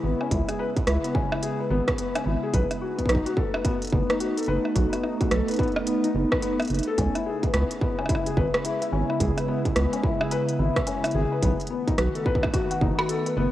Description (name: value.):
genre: IDM.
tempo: 108 BPM.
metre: 4/4.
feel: swing 62% on 16ths.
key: C# minor.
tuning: A4 = 440 Hz.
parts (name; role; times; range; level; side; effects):
warbly tape-like pad; sustained chords; 0.0-13.5 s; C#3 to E4; -30 LUFS; right 2 dB; chorus, built-in reverb, phaser, cassette tape.
felt-muted upright piano; arpeggios; 0.0-13.5 s; B3 to F#5; -28 LUFS; left 4 dB; vintage 12-bit sampler grit, cassette tape, analog delay.
round analog bass; bass; 0.0-13.5 s; F#1 to C#2; -24 LUFS; right 1 dB; tube saturation.
industrial drum kit; drums; 0.2-13.3 s; hi-hat, rim click; -29 LUFS; right 1 dB; small room ambience.
electronic kick drum; drums; 0.3-13.0 s; none; -27 LUFS; right 1 dB; distortion, small room ambience.
room: moderate lush hall reverb, RT60 2.0 s.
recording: home recording on cassette.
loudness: -22 LUFS.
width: side -14 dB against mid.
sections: 0.0-13.5 A section.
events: none.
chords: 0.0 C#m7; 2.5 B7; 7.0 C#m7; 11.4 B7.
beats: | 0.31 0.87 1.43 1.98 | 2.54 3.09 3.65 4.20 | 4.76 5.31 5.87 6.42 | 6.98 7.54 8.09 8.65 | 9.20 9.76 10.31 10.87 | 11.43 11.98 12.54 13.09.